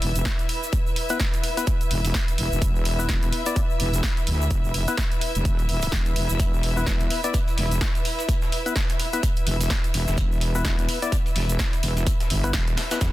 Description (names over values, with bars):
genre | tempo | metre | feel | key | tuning
bass house | 127 BPM | 4/4 | swing 58% on 16ths | unclear | A4 = 439 Hz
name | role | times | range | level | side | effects
wobble bass | bass | 0.0-13.1 s | E1 to E2 | -24 LUFS | equal | chorus, overdrive, sidechain pumping
big-room dance drum kit | drums | 0.0-13.1 s | hi-hat, snare drum | -30 LUFS | equal | none
rich studio string section | texture | 0.0-13.1 s | E4 to E5 | -31 LUFS | equal | sidechain pumping
egg shaker | percussion | 0.2-13.1 s | none | -36 LUFS | right 3 dB | none
electronic kick drum | drums | 0.3-13.1 s | none | -24 LUFS | equal | none
percussive organ stab | stabs | 1.1-13.0 s | B3 to D5 | -31 LUFS | left 4 dB | chorus, sidechain pumping, dub echo
dusty soul sampler-style drum kit | drums | 6.4-13.1 s | hi-hat, snare drum, tambourine | -35 LUFS | left 1 dB | overdrive, sidechain pumping on perc, high-pass filter on perc, sidechain pumping on hats, high-pass filter on hats, high-pass filter on snare, high-pass filter on room
room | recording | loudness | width
little or no reverb | dense, heavily limited modern master | -21 LUFS | side -16 dB against mid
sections
0.0-13.1 A section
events
none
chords
0.0 E5